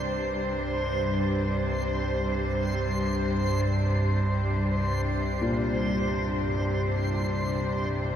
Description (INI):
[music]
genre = dark ambient drone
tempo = free time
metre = none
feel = none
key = unclear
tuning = A4 = 440 Hz
[part]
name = clear chamber cello section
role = sustained chords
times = 0.0-8.2 s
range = C3 to C5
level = -30 LUFS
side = left 1 dB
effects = none
[part]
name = organ-like drone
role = drone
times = 0.0-8.2 s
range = C2 to G2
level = -28 LUFS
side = equal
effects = ensemble chorus, built-in reverb
[part]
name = backwards swelling texture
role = texture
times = 0.0-8.2 s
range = C5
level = -35 LUFS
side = right 1 dB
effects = built-in reverb
[part]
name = dark concert grand piano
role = arpeggios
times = 5.4-8.2 s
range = Bb2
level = -32 LUFS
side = left 2 dB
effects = tape echo
[sound]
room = wet huge ambient reverb, RT60 8.4 s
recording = none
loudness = -25 LUFS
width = side -9 dB against mid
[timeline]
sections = 0.0-8.2 A section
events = none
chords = 0.0 C5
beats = free time